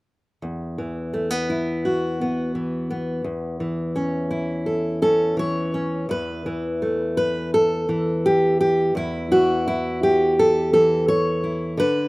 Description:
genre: folk, solo fingerstyle acoustic guitar.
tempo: 84 BPM.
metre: 4/4.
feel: straight.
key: unclear.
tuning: A4 = 440 Hz.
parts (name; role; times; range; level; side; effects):
fingerpicked steel-string acoustic guitar; solo; 0.4-12.1 s; E2 to C#5; -19 LUFS; equal; none.
room: light reverb.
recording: recorded outdoors, with no room sound.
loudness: -19 LUFS.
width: side -22 dB against mid.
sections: 0.4-6.1 A section; 6.1-12.1 B section.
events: none.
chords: 0.4 E5; 3.3 A/E.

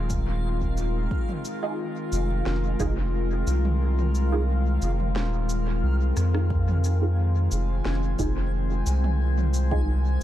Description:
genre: ambient dub.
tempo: 89 BPM.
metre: 4/4.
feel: straight.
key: F minor.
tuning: A4 = 440 Hz.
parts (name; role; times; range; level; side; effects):
warbly tape-like pad; sustained chords; 0.0-10.2 s; Eb3 to C5; -30 LUFS; left 2 dB; chorus, built-in reverb.
soft dub sub bass; bass; 0.0-10.2 s; Eb1 to F2; -23 LUFS; equal; none.
backwards swelling texture; texture; 0.0-10.2 s; F5 to Ab5; -40 LUFS; equal; built-in reverb.
electronic kick drum; drums; 0.1-9.8 s; none; -30 LUFS; equal; studio reverb.
organic electronic drum kit; drums; 0.1-9.7 s; cabasa, rim click, snare drum, toms; -36 LUFS; right 1 dB; studio reverb, dub echo.
filtered dub chord stab; stabs; 1.6-9.8 s; Eb4 to Ab4; -34 LUFS; right 3 dB; phaser, ensemble chorus, dub echo.
room: little or no reverb.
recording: echo-heavy mix.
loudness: -22 LUFS.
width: side -13 dB against mid.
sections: 0.0-10.2 A section.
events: kick drops out 3.8-6.5; drum fill 6.2-6.5.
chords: 0.0 Fm7.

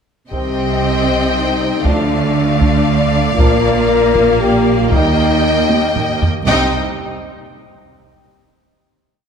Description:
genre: cinematic, epic orchestral film score.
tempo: 117 BPM.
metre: 3/4.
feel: straight.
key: C dorian.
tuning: A4 = 440 Hz.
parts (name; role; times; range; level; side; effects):
warm symphonic violin section; melody; 0.3-6.8 s; F5 to G5; -22 LUFS; left 4 dB; none.
warm symphonic violin section; second line; 0.3-6.8 s; D5 to Eb5; -22 LUFS; left 1 dB; none.
warm symphonic viola section; accompaniment; 0.3-6.8 s; A3 to Eb4; -21 LUFS; right 1 dB; none.
warm French horn section; sustained chords; 0.3-6.7 s; C4 to Bb4; -18 LUFS; left 6 dB; none.
warm trombone section; sustained chords; 0.3-6.7 s; Eb3 to Eb4; -27 LUFS; right 2 dB; none.
rich symphonic cello section; bass; 0.3-6.8 s; C2 to D3; -20 LUFS; right 4 dB; none.
rich symphonic double bass section; bass; 0.3-6.8 s; Bb1 to Eb2; -21 LUFS; right 4 dB; none.
taiko ensemble; drums; 0.3-6.5 s; none; -18 LUFS; equal; none.
room: wet concert hall reverb, RT60 2.4 s.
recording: none.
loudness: -12 LUFS.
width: side -6 dB against mid.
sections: 0.3-6.5 theme; 6.5-8.0 final chord.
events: drum fill 5.7-6.5.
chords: 0.3 Cm; 1.9 Dm; 3.4 Bb; 4.9 Eb; 6.5 Cm.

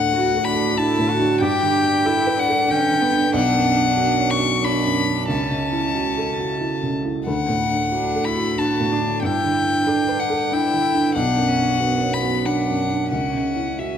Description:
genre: neoclassical piano and strings.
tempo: 92 BPM.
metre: 3/4.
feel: rubato.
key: D major.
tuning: A4 = 443 Hz.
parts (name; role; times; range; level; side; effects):
rich violin; melody; 0.0-14.0 s; E5 to C#6; -21 LUFS; left 5 dB; none.
felt-muted upright piano; accompaniment; 0.0-14.0 s; B1 to C#5; -21 LUFS; right 2 dB; none.
warm cello; second line; 0.1-14.0 s; B3 to G4; -26 LUFS; right 5 dB; none.
room: moderate concert hall reverb, RT60 2.1 s.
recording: none.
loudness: -18 LUFS.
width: side -8 dB against mid.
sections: 0.0-14.0 A section.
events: none.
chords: 0.0 D; 1.4 Gadd9; 3.3 Bmadd9; 5.3 A6/C#; 7.3 D; 9.2 Gadd9; 11.2 Bmadd9; 13.1 A6/C# (rootless).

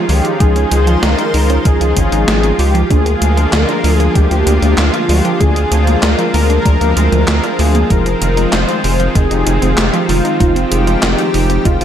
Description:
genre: synthwave.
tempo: 96 BPM.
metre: 4/4.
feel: straight.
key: unclear.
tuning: A4 = 439 Hz.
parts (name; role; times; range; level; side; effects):
wide unison lead; melody; 0.0-11.8 s; F4 to C5; -18 LUFS; equal; analog chorus, tape echo.
lush unison pad; sustained chords; 0.0-11.8 s; D3 to C5; -19 LUFS; equal; chorus, sidechain pumping.
analog pluck; arpeggios; 0.1-11.8 s; D3 to Eb4; -21 LUFS; right 3 dB; chorus, phaser, tape echo.
mellow synth brass; stabs; 0.1-11.8 s; F3 to Bb4; -21 LUFS; left 4 dB; chorus.
round analog bass; bass; 0.1-11.8 s; F1 to D2; -14 LUFS; equal; sidechain pumping.
gated 80s digital drum machine; drums; 0.1-11.8 s; handclaps, hi-hat, snare drum; -18 LUFS; equal; gated reverb, gated reverb snare.
electronic kick drum; drums; 0.4-11.8 s; none; -14 LUFS; equal; none.
room: little or no reverb.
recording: none.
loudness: -10 LUFS.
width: side -9 dB against mid.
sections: 0.0-11.8 A section.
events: none.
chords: 0.0 Dbadd9; 2.9 Bb7/D; 7.9 Fm7.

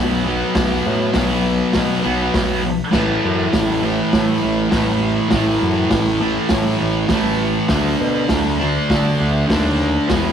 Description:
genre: garage rock duo or trio.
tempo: 100 BPM.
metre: 4/4.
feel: straight.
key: unclear.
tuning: A4 = 438 Hz.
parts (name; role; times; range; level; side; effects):
thick fuzz guitar; riff; 0.0-10.3 s; E2 to D4; -17 LUFS; equal; distortion.
growling picked electric bass; bass; 0.0-10.3 s; E1 to D3; -22 LUFS; equal; overdrive.
vintage drum kit; drums; 0.5-10.2 s; crash cymbal, hi-hat, kick drum, snare drum; -21 LUFS; equal; none.
room: moderate stone room reverb, RT60 1.1 s.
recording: rough rehearsal-room recording, tube saturation.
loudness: -15 LUFS.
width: side -8 dB against mid.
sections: 0.0-10.3 A section.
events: none.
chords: 0.0 B5; 2.9 A5; 7.7 D5.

